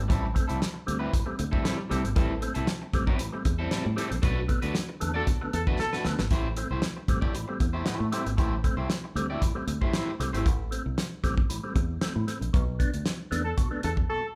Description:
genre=funk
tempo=116 BPM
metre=4/4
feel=straight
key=A dorian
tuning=A4 = 440 Hz
part: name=percussive tonewheel organ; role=stabs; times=0.0-14.2 s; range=A2 to D4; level=-37 LUFS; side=equal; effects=overdrive, chorus vibrato, fast rotary speaker
part: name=fingered electric bass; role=bass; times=0.0-14.0 s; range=G#1 to A2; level=-34 LUFS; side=equal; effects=none
part: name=electric guitar at the edge of break-up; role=accompaniment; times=0.1-10.5 s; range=G3 to D5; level=-36 LUFS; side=equal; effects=phaser
part: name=damped 70s drum kit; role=drums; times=0.1-14.1 s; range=hi-hat, kick drum, snare drum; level=-30 LUFS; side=equal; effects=none
part: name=brilliant trombone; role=second line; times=5.2-6.0, 13.4-14.3 s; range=A4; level=-34 LUFS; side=equal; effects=none
room=moderate large studio reverb, RT60 1.0 s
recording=band playing live in one room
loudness=-28 LUFS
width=mono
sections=0.0-14.4 A section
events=band accent 4.2-6.3, 12.5-14.4; drum fill 5.8-6.3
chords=0.0 Am7; 4.2 Bm7; 6.3 Am7; 12.5 Bm7

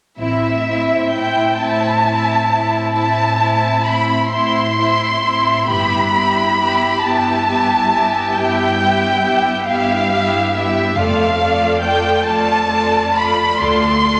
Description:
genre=classical, slow romantic movement for symphony orchestra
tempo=45 BPM (dotted quarters)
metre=12/8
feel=rubato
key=A minor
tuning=A4 = 440 Hz
part: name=warm symphonic violin section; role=melody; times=0.2-14.2 s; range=E5 to C6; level=-18 LUFS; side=equal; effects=none
part: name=clear chamber violin section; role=second line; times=0.2-14.2 s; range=E4 to E5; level=-23 LUFS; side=equal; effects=none
part: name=clear symphonic viola section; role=accompaniment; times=0.2-14.2 s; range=A3 to F4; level=-26 LUFS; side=equal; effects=none
part: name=rich symphonic cello section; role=bass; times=0.2-14.2 s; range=D2 to A2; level=-26 LUFS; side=equal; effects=none
part: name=rich symphonic double bass section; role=bass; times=0.2-14.2 s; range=F1 to D2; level=-30 LUFS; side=equal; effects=none
room=wet scoring stage reverb, RT60 1.8 s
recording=none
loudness=-16 LUFS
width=mono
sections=0.2-14.2 A section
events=none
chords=0.2 Am; 5.7 Em/G; 11.0 Dm/F; 13.6 Dm7

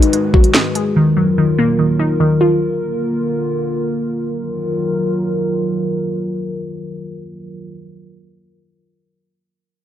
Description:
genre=hip hop, drill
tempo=145 BPM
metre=4/4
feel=half-time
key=Eb harmonic minor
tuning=A4 = 439 Hz
part: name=glassy wavetable pluck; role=accompaniment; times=0.0-2.6 s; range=Eb3 to Ab4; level=-14 LUFS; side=left 1 dB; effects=chorus, phaser, low-pass filter
part: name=dark analog pad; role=sustained chords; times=0.0-7.7 s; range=D3 to Cb5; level=-20 LUFS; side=equal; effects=chorus, low-pass filter
part: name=drill drum kit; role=drums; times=0.0-0.8 s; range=handclaps, hi-hat, kick drum, snare drum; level=-12 LUFS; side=equal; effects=none
part: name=downlifter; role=sound effects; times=0.0-1.0 s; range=none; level=-37 LUFS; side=equal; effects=none
room=light reverb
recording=dry, gritty hardware recording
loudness=-14 LUFS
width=side -11 dB against mid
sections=0.0-4.3 A section; 4.3-7.6 B section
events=filter sweep 0.0-4.3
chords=0.0 Abm7; 1.0 Ebmadd9; 2.6 Bb; 4.3 Ebmadd9

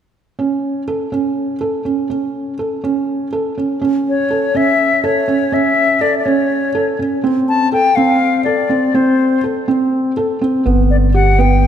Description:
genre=contemporary instrumental, chamber music in an uneven meter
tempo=246 BPM (eighths)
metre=7/8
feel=straight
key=A mixolydian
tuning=A4 = 440 Hz
part: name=felt-muted upright piano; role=arpeggios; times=0.4-11.7 s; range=B3 to A4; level=-16 LUFS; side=right 2 dB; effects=none
part: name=bright reedy wooden flute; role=melody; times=4.1-11.7 s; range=C5 to A5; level=-16 LUFS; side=left 4 dB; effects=none
part: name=warm sub bass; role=bass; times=10.7-11.7 s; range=G1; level=-12 LUFS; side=equal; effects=none
room=moderate concert hall reverb, RT60 2.5 s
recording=none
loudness=-13 LUFS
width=side -9 dB against mid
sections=0.4-3.8 A section; 3.8-11.7 B section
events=none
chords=0.4 A; 7.2 F (rootless); 10.7 G

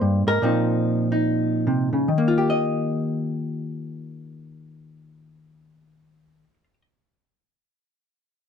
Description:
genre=solo jazz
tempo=144 BPM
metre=4/4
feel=swing 65% on 8ths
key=Eb major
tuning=A4 = 441 Hz
part: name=hollow-body jazz guitar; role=solo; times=0.0-6.8 s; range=G2 to Eb5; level=-21 LUFS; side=equal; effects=none
room=light reverb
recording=dark, warm production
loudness=-20 LUFS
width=side -7 dB against mid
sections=0.0-2.1 A section; 2.1-5.4 B section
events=none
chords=0.4 Bbsus24; 2.1 Ebadd9

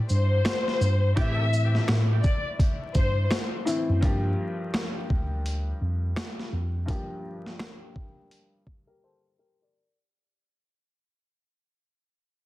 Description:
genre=hip hop, boom-bap hip-hop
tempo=84 BPM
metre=4/4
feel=swing 62% on 16ths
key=G dorian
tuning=A4 = 438 Hz
part: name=bright grand piano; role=accompaniment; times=0.0-10.0 s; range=G2 to D5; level=-34 LUFS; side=left 2 dB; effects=cassette tape, high-pass filter, low-pass filter
part: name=warm studio violin section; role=melody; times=0.1-3.3 s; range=C5 to E5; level=-31 LUFS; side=left 3 dB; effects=high-pass filter, low-pass filter, ping-pong delay
part: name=mellow tine electric piano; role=bass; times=0.1-6.8 s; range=D2 to A2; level=-24 LUFS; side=equal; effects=medium stereo tremolo
part: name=boom bap sampler-style drum kit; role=drums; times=0.1-8.9 s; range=hi-hat, kick drum, rim click, shaker, snare drum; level=-27 LUFS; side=equal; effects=none
part: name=clear horn section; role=stabs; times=1.2-1.5 s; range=E3 to G4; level=-40 LUFS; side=right 1 dB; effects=high-pass filter, low-pass filter, ping-pong delay
room=studio ambience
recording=dense, heavily limited modern master, vinyl crackle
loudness=-23 LUFS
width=side -17 dB against mid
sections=0.0-4.0 A section; 4.0-9.7 B section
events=fade-out 4.0-9.7; filter sweep on grand piano 4.0-9.7; break 6.9-9.7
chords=0.0 Am7; 4.0 Gm7

